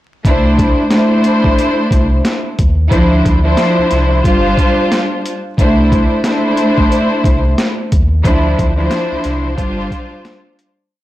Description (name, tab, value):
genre	hip hop, boom-bap hip-hop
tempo	90 BPM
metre	4/4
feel	swing 59% on 16ths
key	C major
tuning	A4 = 441 Hz
part	sub bass with octave	bass	0.2-9.9 s	G1 to Eb2	-15 LUFS	equal	tube saturation
part	boom bap sampler-style drum kit	drums	0.2-10.8 s	hi-hat, kick drum, snare drum	-16 LUFS	equal	overdrive
part	dark studio string section	accompaniment	0.3-10.7 s	F3 to C5	-13 LUFS	equal	high-pass filter, low-pass filter
room	light reverb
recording	blown-out, overdriven recording, vinyl crackle, overdrive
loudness	-11 LUFS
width	side -15 dB against mid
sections	0.2-10.9 hook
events	fade-out 8.2-10.9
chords	0.2 C69; 2.9 Dm9; 4.2 G7sus4; 5.6 C69; 8.2 Dm9; 9.6 G7sus4